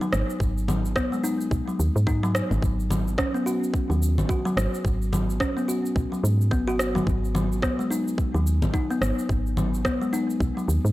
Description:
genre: organic downtempo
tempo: 108 BPM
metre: 4/4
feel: swing 59% on 16ths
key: G# minor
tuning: A4 = 440 Hz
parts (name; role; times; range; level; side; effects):
- kalimba; arpeggios; 0.0-10.7 s; F#3 to F#4; -26 LUFS; left 1 dB; analog delay
- electronic shaker, rim click and congas; drums; 0.0-10.9 s; none; -29 LUFS; equal; none
- woody FM bass; bass; 0.1-10.9 s; G#1 to G#2; -24 LUFS; equal; sidechain pumping
- electronic kick drum; drums; 0.4-10.5 s; none; -28 LUFS; equal; none
room: little or no reverb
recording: dry, gritty hardware recording, transformer saturation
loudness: -22 LUFS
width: side -17 dB against mid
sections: 0.0-10.9 A section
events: none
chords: 0.0 G#7(no3); 2.6 N.C.; 7.1 G#m7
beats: | 0.40 0.96 1.51 2.07 | 2.62 3.18 3.74 4.29 | 4.85 5.40 5.96 6.51 | 7.07 7.62 8.18 8.74 | 9.29 9.85 10.40

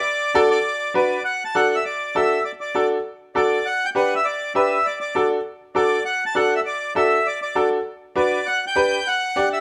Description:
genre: latin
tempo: 200 BPM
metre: 4/4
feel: straight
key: D major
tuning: A4 = 441 Hz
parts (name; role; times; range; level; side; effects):
- accordion; melody; 0.0-9.6 s; D5 to A5; -24 LUFS; equal; none
- bright upright piano; accompaniment; 0.3-9.6 s; D4 to D5; -22 LUFS; equal; none
room: moderate stone room reverb, RT60 1.0 s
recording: band playing live in one room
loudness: -21 LUFS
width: mono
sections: 0.0-1.2 A section; 1.2-9.6 B section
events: none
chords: 0.0 D; 3.7 G; 4.9 D; 8.5 G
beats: | 0.05 0.35 0.65 0.95 | 1.25 1.55 1.85 2.15 | 2.45 2.75 3.05 3.35 | 3.65 3.95 4.25 4.55 | 4.85 5.15 5.46 5.75 | 6.06 6.36 6.66 6.96 | 7.26 7.56 7.86 8.16 | 8.46 8.76 9.06 9.36

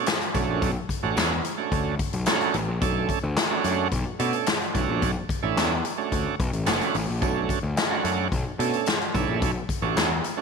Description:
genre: funk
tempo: 109 BPM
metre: 4/4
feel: straight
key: B minor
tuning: A4 = 438 Hz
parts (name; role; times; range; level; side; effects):
- bright tonewheel organ; stabs; 0.0-10.4 s; A3 to A4; -27 LUFS; right 12 dB; overdrive, slow rotary speaker
- swinging big-band drum kit; drums; 0.1-10.4 s; handclaps, hi-hat, kick drum, snare drum; -26 LUFS; left 2 dB; none
- tambourine; percussion; 0.1-10.4 s; none; -43 LUFS; left 19 dB; none
- fuzz picked electric bass; bass; 0.3-10.2 s; F#1 to B2; -28 LUFS; left 2 dB; overdrive
room: light reverb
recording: 1960s-style stereo with parts hard left and right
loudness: -22 LUFS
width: side -5 dB against mid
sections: 0.0-10.4 A section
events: none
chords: 0.0 Bm7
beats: 0.07 | 0.61 1.17 1.72 2.27 | 2.82 3.37 3.92 4.47 | 5.02 5.57 6.12 6.67 | 7.22 7.77 8.32 8.87 | 9.42 9.96

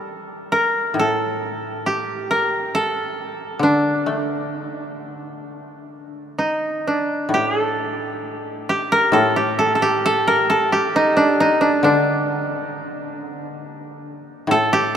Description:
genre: japanese traditional, Japanese chamber music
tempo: 67 BPM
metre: 4/4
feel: rubato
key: D miyako bushi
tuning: A4 = 440 Hz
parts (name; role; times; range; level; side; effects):
- koto; melody; 0.0-15.0 s; D4 to Bb4; -19 LUFS; right 1 dB; none
- koto; accompaniment; 0.0-15.0 s; A2 to A3; -26 LUFS; left 2 dB; none
room: wet cathedral reverb, RT60 6.9 s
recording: none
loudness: -17 LUFS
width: side -8 dB against mid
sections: 0.0-7.3 A section; 7.3-15.0 B section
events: none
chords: none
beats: | 0.07 0.96 1.86 2.74 | 3.62 4.52 5.43 6.37 | 7.31 8.22 9.14 10.05 | 10.95 11.84 12.73 13.61 | 14.49

